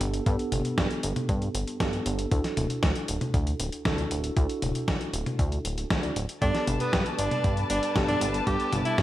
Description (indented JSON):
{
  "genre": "italo disco",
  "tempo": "117 BPM",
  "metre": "4/4",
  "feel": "straight",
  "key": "unclear",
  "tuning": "A4 = 440 Hz",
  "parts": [
    { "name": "mellow tine electric piano", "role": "stabs", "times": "0.0-9.0 s", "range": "G3 to D5", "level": "-33 LUFS", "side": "right 2 dB", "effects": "medium stereo tremolo, digital delay" },
    { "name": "chorused synth bass", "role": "bass", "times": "0.0-9.0 s", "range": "D1 to G2", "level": "-31 LUFS", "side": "equal", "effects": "tube saturation" },
    { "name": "dusty soul sampler-style drum kit", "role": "drums", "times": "0.0-9.0 s", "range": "hi-hat, snare drum, toms", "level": "-30 LUFS", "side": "equal", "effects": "small room ambience, gated reverb" },
    { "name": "electronic kick drum", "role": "drums", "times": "0.3-9.0 s", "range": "none", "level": "-28 LUFS", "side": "equal", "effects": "small room ambience" },
    { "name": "bright alto saxophone", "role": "melody", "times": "6.4-9.0 s", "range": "B3 to G4", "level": "-28 LUFS", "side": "equal", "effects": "none" },
    { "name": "dark studio string section", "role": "sustained chords", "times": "6.4-9.0 s", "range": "G3 to A5", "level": "-32 LUFS", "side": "left 3 dB", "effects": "none" }
  ],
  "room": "light reverb",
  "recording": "vinyl crackle",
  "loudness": "-25 LUFS",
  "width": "side -14 dB against mid",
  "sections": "0.0-9.0 A section",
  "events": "none",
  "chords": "0.0 Gadd9; 2.3 Dadd9; 6.4 Gadd9"
}